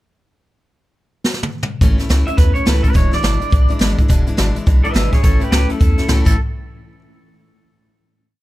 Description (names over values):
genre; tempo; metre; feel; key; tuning
rockabilly; 210 BPM; 4/4; swing 61% on 8ths; A major; A4 = 439 Hz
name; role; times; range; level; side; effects
jazz brush drum kit; drums; 1.2-6.3 s; crash cymbal, hi-hat, kick drum, snare drum, toms; -15 LUFS; equal; none
picked steel-string acoustic guitar; accompaniment; 1.8-6.4 s; E2 to E4; -23 LUFS; left 3 dB; plate reverb
warm sub bass; bass; 1.8-6.4 s; E1 to E2; -18 LUFS; equal; none
electric guitar through a small old amp; melody; 2.3-6.4 s; G4 to E5; -23 LUFS; right 2 dB; plate reverb, tape echo
room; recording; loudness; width
little or no reverb; none; -13 LUFS; side -17 dB against mid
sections
0.7-1.8 pickup bar; 1.8-6.4 A section; 6.4-7.5 final hit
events
drum fill 1.2-1.8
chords
0.7 N.C.; 1.8 A; 3.0 E7; 5.2 A; 6.4 N.C.